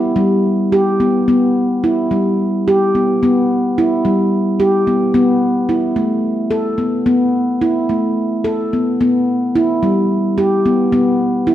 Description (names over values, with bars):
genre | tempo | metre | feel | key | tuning
contemporary instrumental, contemporary | 218 BPM (eighths) | 7/8 | straight | E minor | A4 = 440 Hz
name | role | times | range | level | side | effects
handpan | solo | 0.0-11.5 s | G3 to A4 | -13 LUFS | equal | none
room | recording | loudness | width
wet concert hall reverb, RT60 1.8 s | none | -13 LUFS | side -12 dB against mid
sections
0.0-1.3 A section; 1.3-11.5 B section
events
none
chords
none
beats
0.17 0.45 0.73 1.01 | 1.29 1.57 1.84 2.12 2.40 2.68 2.96 | 3.23 3.51 3.78 4.06 4.33 4.60 4.88 | 5.15 5.42 5.69 5.96 6.24 6.51 6.78 | 7.06 7.33 7.61 7.89 8.17 8.45 8.73 | 9.01 9.29 9.57 9.84 10.12 10.39 10.66 | 10.94 11.21 11.48